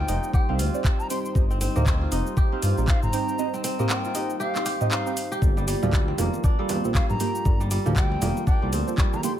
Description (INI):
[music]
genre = afro house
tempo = 118 BPM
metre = 4/4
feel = swing 59% on 16ths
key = unclear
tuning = A4 = 438 Hz
[part]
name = bright reedy bansuri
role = melody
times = 0.0-9.3 s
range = F5 to C6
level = -33 LUFS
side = left 2 dB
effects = tape echo
[part]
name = dark analog pad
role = sustained chords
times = 0.0-9.4 s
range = G3 to C5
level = -34 LUFS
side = equal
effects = chorus, sidechain pumping
[part]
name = kora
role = arpeggios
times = 0.0-9.4 s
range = F3 to G4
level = -31 LUFS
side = right 1 dB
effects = sidechain pumping, tape echo
[part]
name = deep mellow chord stab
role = stabs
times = 0.0-9.4 s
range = Bb3 to G5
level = -32 LUFS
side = right 5 dB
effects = chorus, phaser, sidechain pumping, tape echo
[part]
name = smooth synth bass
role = bass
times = 0.0-8.8 s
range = F1 to G2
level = -26 LUFS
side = equal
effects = sidechain pumping
[part]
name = afro-pop drum kit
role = drums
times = 0.1-9.4 s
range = handclaps, hi-hat, shaker, toms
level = -30 LUFS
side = equal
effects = none
[part]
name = electronic kick drum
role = drums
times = 0.3-9.1 s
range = none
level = -21 LUFS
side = equal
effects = none
[part]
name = congas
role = percussion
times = 5.4-9.4 s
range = none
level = -33 LUFS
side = right 4 dB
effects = none
[sound]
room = little or no reverb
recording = none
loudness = -21 LUFS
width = side -11 dB against mid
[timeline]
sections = 0.0-9.4 A section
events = break 3.4-5.4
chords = 0.0 Cm; 5.4 Gm7